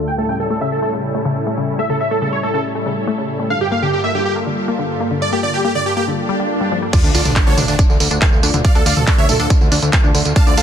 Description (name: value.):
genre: uplifting trance.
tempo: 140 BPM.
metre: 4/4.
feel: straight.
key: D harmonic minor.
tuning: A4 = 441 Hz.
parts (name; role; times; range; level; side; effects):
lush unison pad; sustained chords; 0.0-10.6 s; G2 to A4; -23 LUFS; equal; chorus, sidechain pumping.
wide unison pluck; arpeggios; 0.0-10.5 s; C#3 to D4; -22 LUFS; left 3 dB; cassette tape, sidechain pumping, ping-pong delay.
supersaw chords; melody; 0.1-10.6 s; D4 to A5; -20 LUFS; right 1 dB; wide subtle chorus, sidechain pumping, ping-pong delay.
swell and sub drop; sound effects; 6.2-8.6 s; none; -23 LUFS; equal; none.
electronic kick drum; drums; 6.9-10.4 s; none; -13 LUFS; equal; overdrive.
punchy analog drum machine; drums; 6.9-10.6 s; crash cymbal, handclaps, hi-hat, tambourine, toms; -19 LUFS; right 1 dB; low-pass filter on cymbals, low-pass filter on hats, low-pass filter on perc, low-pass filter on toms, low-pass filter on snare, low-pass filter on room.
fat analog bass; bass; 7.0-10.6 s; D2; -19 LUFS; right 1 dB; sidechain pumping.
room: digital ambience.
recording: dense, heavily limited modern master, low-pass filter.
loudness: -14 LUFS.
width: side -8 dB against mid.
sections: 0.0-6.9 A section; 6.9-10.6 B section.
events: filter sweep on synth pluck 0.0-6.9; filter sweep 0.0-6.9; swell 6.2-6.9; drop 6.9-10.6; impact 6.9-8.6.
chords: 0.1 A7; 3.5 Gm7; 6.9 Dm.